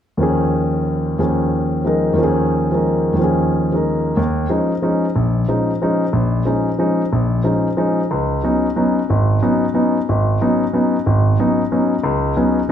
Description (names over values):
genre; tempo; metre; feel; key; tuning
jazz; 182 BPM; 3/4; swing 63% on 8ths; unclear; A4 = 440 Hz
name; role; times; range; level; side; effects
warm concert grand piano; solo; 0.2-12.7 s; Ab1 to Bb4; -15 LUFS; equal; none
room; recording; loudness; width
wet recital hall reverb, RT60 1.4 s; recorded in a church or concert hall; -15 LUFS; side -9 dB against mid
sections
0.2-4.2 A section; 4.2-12.0 B section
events
none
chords
0.2 Eb9sus4; 8.1 Db9sus4